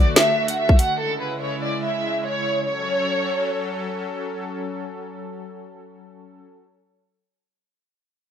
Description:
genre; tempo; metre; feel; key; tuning
hip hop, drill; 144 BPM; 4/4; half-time; F# minor; A4 = 444 Hz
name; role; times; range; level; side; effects
warm studio violin section; melody; 0.0-3.9 s; A4 to F#5; -23 LUFS; right 1 dB; low-pass filter, digital delay
warm analog pad; sustained chords; 0.0-6.5 s; C#3 to A4; -29 LUFS; left 1 dB; chorus, tremolo
drill drum kit; drums; 0.2-0.9 s; hi-hat, kick drum, snare drum; -15 LUFS; equal; none
room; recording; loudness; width
moderate digital room reverb, RT60 1.2 s; rough home demo mix; -20 LUFS; side -9 dB against mid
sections
0.0-2.7 A section; 2.7-6.0 B section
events
none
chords
0.0 D; 1.0 C#m; 2.7 F#m

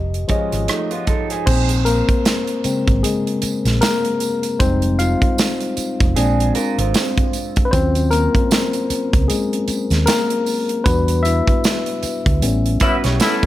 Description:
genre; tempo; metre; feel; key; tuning
lush 1970s-style soul; 77 BPM; 4/4; swing 58% on 16ths; unclear; A4 = 439 Hz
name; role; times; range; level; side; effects
mellow tine electric piano; accompaniment; 0.0-13.5 s; Db3 to F5; -20 LUFS; left 3 dB; overdrive
hollow-body short-scale fingered electric bass; bass; 0.0-13.2 s; F1 to E2; -19 LUFS; right 1 dB; none
modern studio drum kit; drums; 0.1-13.5 s; crash cymbal, hi-hat, kick drum, rim click, snare drum; -19 LUFS; right 1 dB; none
electric guitar through a small old amp; riff; 0.3-7.7, 12.8-13.5 s; G#3 to C#5; -24 LUFS; right 6 dB; spring reverb
tambourine; percussion; 1.5-13.4 s; none; -32 LUFS; right 6 dB; none
mellow horn section; stabs; 12.8-13.5 s; B3 to E4; -19 LUFS; left 2 dB; slapback echo
room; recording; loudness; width
little or no reverb; none; -15 LUFS; side -14 dB against mid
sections
0.0-1.5 A section; 1.5-13.5 B section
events
tine electric piano solo 1.5-13.5; band accent 10.9-13.5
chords
0.0 F7alt; 1.5 Bbm7; 4.6 Fm7; 6.2 Bb7; 7.7 Ebm7; 10.9 Em7; 12.4 A9

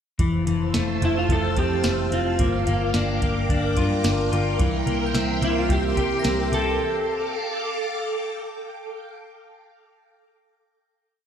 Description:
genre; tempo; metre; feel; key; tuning
dream pop; 109 BPM; 4/4; straight; F major; A4 = 440 Hz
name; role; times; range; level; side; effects
phased string machine; sustained chords; 0.4-9.0 s; A4 to E6; -28 LUFS; equal; ensemble chorus, phaser
clean electric guitar; arpeggios; 0.2-7.4 s; E3 to G4; -26 LUFS; left 3 dB; lush chorus, digital delay
vintage muted picked electric bass; bass; 0.2-6.8 s; F1 to C3; -26 LUFS; equal; none
soft vintage rhythm box; drums; 0.2-6.7 s; hi-hat, kick drum, snare drum; -25 LUFS; equal; none
electric slide guitar; melody; 1.0-8.4 s; E4 to A4; -26 LUFS; right 2 dB; digital delay
glockenspiel with brass mallets; texture; 5.1-7.0 s; G6 to Bb6; -41 LUFS; right 2 dB; none
room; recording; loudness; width
moderate plate reverb, RT60 2.0 s; played on a big sound system in a bare room, stone room reverb; -20 LUFS; side -8 dB against mid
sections
0.2-9.0 A section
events
none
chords
0.2 Fmaj7; 2.4 Gm7; 4.6 C7; 6.8 F69

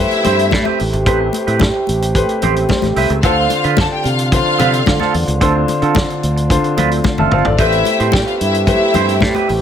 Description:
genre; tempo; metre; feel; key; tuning
disco; 110 BPM; 4/4; straight; A minor; A4 = 440 Hz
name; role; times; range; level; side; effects
dark studio string section; second line; 0.0-9.4 s; E4 to A5; -18 LUFS; left 2 dB; none
warm concert grand piano; accompaniment; 0.0-9.6 s; D3 to A5; -19 LUFS; left 3 dB; none
mellow French horn section; sustained chords; 0.0-9.6 s; B2 to G4; -21 LUFS; right 2 dB; none
fingered electric bass; bass; 0.0-9.6 s; F#1 to D3; -18 LUFS; equal; none
clean electric guitar; accompaniment; 0.1-9.5 s; C4 to C5; -20 LUFS; right 10 dB; none
warm soul drum kit; drums; 0.1-9.6 s; hi-hat, kick drum, snare drum, toms; -18 LUFS; equal; none
congas; percussion; 0.2-9.5 s; none; -23 LUFS; left 7 dB; none
room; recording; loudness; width
light reverb, studio reverb; none; -12 LUFS; side -8 dB against mid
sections
0.0-9.6 A section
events
grand piano fill 2.4-3.2; drum fill 7.0-7.6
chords
0.0 Am9; 3.2 Dm7; 7.6 Am9

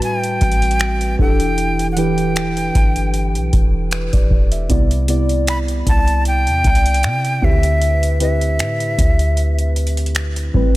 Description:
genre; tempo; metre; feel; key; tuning
contemporary R&B; 77 BPM; 4/4; swing 54% on 16ths; unclear; A4 = 440 Hz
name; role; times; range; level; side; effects
breathy bright jazz flute; melody; 0.0-9.7 s; E5 to B5; -21 LUFS; equal; tape echo
muted felt-like synth keys; accompaniment; 0.0-10.8 s; A2 to E5; -21 LUFS; right 1 dB; chorus
booming analog drum machine; drums; 0.0-10.7 s; finger snaps, hi-hat, kick drum; -18 LUFS; equal; none
clean 808-style bass; bass; 0.4-10.8 s; E1 to C3; -18 LUFS; equal; none
room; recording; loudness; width
digital ambience; none; -14 LUFS; side -18 dB against mid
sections
0.0-10.8 A section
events
none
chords
0.0 Am9; 1.2 Em7; 4.7 Cmaj9; 7.4 D13sus4

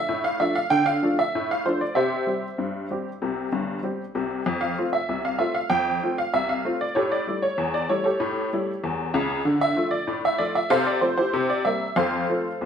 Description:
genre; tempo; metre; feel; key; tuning
ragtime piano; 96 BPM; 2/4; straight; F major; A4 = 440 Hz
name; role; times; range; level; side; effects
honky-tonk upright piano; solo; 0.0-12.7 s; G1 to G5; -22 LUFS; equal; none
room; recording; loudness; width
wet stone room reverb, RT60 1.1 s; band playing live in one room; -22 LUFS; side -7 dB against mid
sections
0.0-12.7 A section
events
none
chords
0.0 Dm; 2.0 C; 4.5 F; 7.0 A7; 9.5 Dm; 10.7 F/C; 11.3 C7; 12.0 F

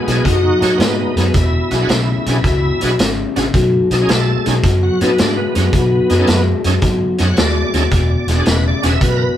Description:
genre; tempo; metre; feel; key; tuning
electric blues shuffle; 110 BPM; 4/4; swing 67% on 8ths; B mixolydian; A4 = 437 Hz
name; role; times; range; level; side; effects
bright tonewheel organ; accompaniment; 0.0-9.4 s; B3 to F#5; -20 LUFS; right 3 dB; slow rotary speaker, overdrive, chorus vibrato
electric guitar through a small old amp; riff; 0.0-9.3 s; E2 to G#3; -18 LUFS; left 3 dB; none
vintage muted fingered electric bass; bass; 0.1-9.2 s; E1 to A2; -18 LUFS; equal; none
vintage drum kit; drums; 0.1-9.2 s; hi-hat, kick drum, snare drum; -18 LUFS; equal; none
room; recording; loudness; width
moderate studio reverb, RT60 0.6 s; band playing live in one room; -12 LUFS; side -11 dB against mid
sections
0.0-9.4 A section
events
none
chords
0.0 B7; 1.4 E7; 3.5 B7; 7.9 E7

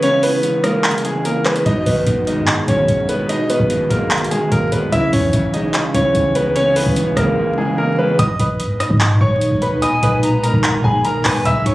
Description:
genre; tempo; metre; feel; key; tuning
hip hop, trap; 147 BPM; 4/4; half-time; G# minor; A4 = 439 Hz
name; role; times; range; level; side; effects
clear grand piano; melody; 0.0-11.7 s; G#3 to E6; -18 LUFS; equal; digital delay
electric guitar at the edge of break-up; accompaniment; 0.0-8.2 s; B2 to G#3; -20 LUFS; equal; lush chorus
booming analog drum machine; drums; 0.0-11.7 s; handclaps, hi-hat, kick drum, rim click; -20 LUFS; equal; none
clean 808-style bass; bass; 1.7-11.7 s; G#1 to G#2; -21 LUFS; equal; none
ethereal airy pad; sustained chords; 8.6-11.7 s; A#2 to E4; -20 LUFS; equal; ensemble chorus, built-in reverb
hollow concert flute; second line; 9.8-11.4 s; G#5 to B5; -23 LUFS; left 2 dB; digital delay
room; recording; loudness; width
light reverb; recorded on a phone in the room, club reverb, vinyl crackle, compression; -14 LUFS; side -17 dB against mid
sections
0.0-8.2 A section; 8.2-11.7 B section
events
break 0.0-1.7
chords
0.0 C#m7; 1.7 G#madd9; 4.9 C#m7; 8.2 G#madd9

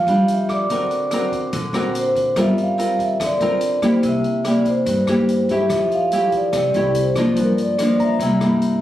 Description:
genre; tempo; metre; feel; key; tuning
bossa nova; 144 BPM; 4/4; straight; F major; A4 = 439 Hz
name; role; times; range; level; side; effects
vibraphone with soft mallets; melody; 0.0-8.8 s; Bb4 to F5; -20 LUFS; right 1 dB; none
nylon-string guitar; accompaniment; 0.0-8.8 s; G2 to A#4; -19 LUFS; left 1 dB; none
upright bass; bass; 0.0-8.8 s; G1 to G2; -28 LUFS; equal; none
open jazz drum kit; drums; 0.1-8.7 s; hi-hat, kick drum, rim click; -32 LUFS; left 1 dB; none
tine electric piano; accompaniment; 0.5-2.4, 8.0-8.8 s; Bb5 to D6; -28 LUFS; left 2 dB; none
room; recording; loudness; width
light reverb; recorded on a phone in the room, studio reverb, compression; -16 LUFS; side -13 dB against mid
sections
0.0-8.8 A section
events
none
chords
0.0 Bb6 (rootless); 0.7 Daug7; 2.4 Gm7; 4.0 C7; 5.7 Fmaj9; 7.4 Gm7; 8.2 C7

